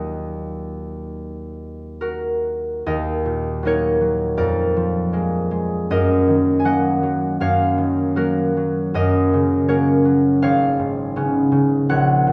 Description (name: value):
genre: classical, solo harp piece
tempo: 80 BPM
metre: 4/4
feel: uneven beats, rubato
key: Eb minor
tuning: A4 = 441 Hz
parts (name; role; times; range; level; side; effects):
- concert harp; solo; 0.0-12.3 s; Ab1 to Ab5; -20 LUFS; equal; none
room: moderate recital hall reverb, RT60 1.4 s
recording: none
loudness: -19 LUFS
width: mono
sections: 0.0-2.9 A section; 2.9-12.3 B section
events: none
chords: 0.0 Ebm; 4.4 Bb7/F; 5.9 Ebm/Gb; 9.0 Gb; 10.4 Db7/Ab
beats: 0.38 1.19 2.01 | 2.87 3.65 4.40 5.15 | 5.91 6.67 7.41 8.15 | 8.95 9.69 10.43 11.18 | 11.91